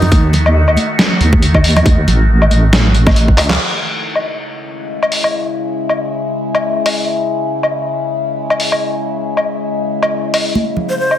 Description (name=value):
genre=deep dubstep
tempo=138 BPM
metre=4/4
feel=swing 56% on 16ths, half-time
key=C# minor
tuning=A4 = 440 Hz
part: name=breathy shakuhachi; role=melody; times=0.0-0.4, 10.9-11.2 s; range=D#4 to B#4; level=-22 LUFS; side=equal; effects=dub echo
part: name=overtone-sweeping drone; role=sustained chords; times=0.0-11.2 s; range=C#3 to F#4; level=-19 LUFS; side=left 2 dB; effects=chorus, built-in reverb
part: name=deep soft wobble bass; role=bass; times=0.0-3.6 s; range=A1 to F#2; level=-11 LUFS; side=equal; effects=chorus
part: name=trip hop sampler-style drum kit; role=drums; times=0.0-11.2 s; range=crash cymbal, handclaps, hi-hat, snare drum, woodblock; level=-16 LUFS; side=left 1 dB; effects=none
part: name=congas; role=percussion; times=0.0-3.6, 10.6-10.9 s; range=none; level=-20 LUFS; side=right 2 dB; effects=dub echo
part: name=electronic kick drum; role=drums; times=0.1-3.4 s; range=none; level=-12 LUFS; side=equal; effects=none
room=moderate echo chamber reverb, RT60 1.3 s, digital ambience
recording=dense, heavily limited modern master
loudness=-12 LUFS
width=side -11 dB against mid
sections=0.0-3.6 A section; 3.6-11.2 B section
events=drop 0.0-3.6; drum fill 3.4; band accent 3.5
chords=0.0 D#dim; 3.6 C#m; 10.6 F#m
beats=| 0.12 0.55 0.99 1.42 | 1.86 2.29 2.73 3.16 | 3.60 4.03 4.47 4.90 | 5.33 5.77 6.21 6.64 | 7.07 7.51 7.94 8.38 | 8.81 9.25 9.68 10.12 | 10.55 10.99